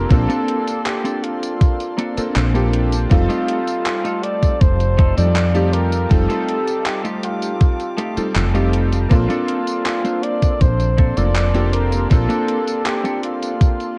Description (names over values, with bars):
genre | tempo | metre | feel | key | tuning
vaporwave | 80 BPM | 4/4 | straight | Bb major | A4 = 440 Hz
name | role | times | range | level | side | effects
breathy flugelhorn | melody | 0.0-14.0 s | F4 to D5 | -26 LUFS | equal | tape echo
bright electric grand piano | accompaniment | 0.0-14.0 s | G3 to A4 | -25 LUFS | equal | analog chorus
warm chamber string section | sustained chords | 0.0-14.0 s | Bb3 to D6 | -36 LUFS | equal | none
woody fretless electric bass | bass | 0.0-12.3 s | F1 to F2 | -20 LUFS | equal | none
electronic kick drum | drums | 0.1-13.8 s | none | -16 LUFS | equal | vintage 12-bit sampler grit
gated 80s digital drum machine | drums | 0.1-13.9 s | handclaps, hi-hat, tambourine | -30 LUFS | equal | gated reverb, vintage 12-bit sampler grit
clean electric guitar | riff | 0.3-13.5 s | A3 to C5 | -29 LUFS | equal | subtle chorus
room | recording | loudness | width
light reverb | dark, warm production, cassette tape | -18 LUFS | mono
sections
0.0-14.0 A section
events
none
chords
0.0 Bbmaj9; 3.1 F9; 9.1 Bbmaj9